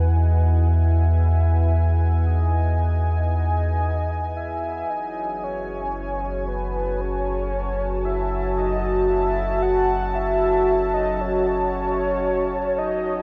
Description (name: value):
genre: ambient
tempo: 57 BPM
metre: 4/4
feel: straight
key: unclear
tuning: A4 = 442 Hz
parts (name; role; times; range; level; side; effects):
- warm velvety synth lead; melody; 0.0-13.2 s; B4 to F#5; -30 LUFS; equal; chorus, tremolo, tape echo
- warm analog pad; sustained chords; 0.0-13.2 s; E4 to A5; -27 LUFS; equal; chorus
- warm sub bass; bass; 0.0-13.2 s; F#1 to E2; -24 LUFS; equal; none
room: moderate huge ambient reverb, RT60 8.7 s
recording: in a vast, echoing space, nothing above 7.9 kHz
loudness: -22 LUFS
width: mono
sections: 0.0-13.2 A section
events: fade-in on soft synth lead 0.0-13.2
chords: 0.0 Emaj7; 4.9 F#m7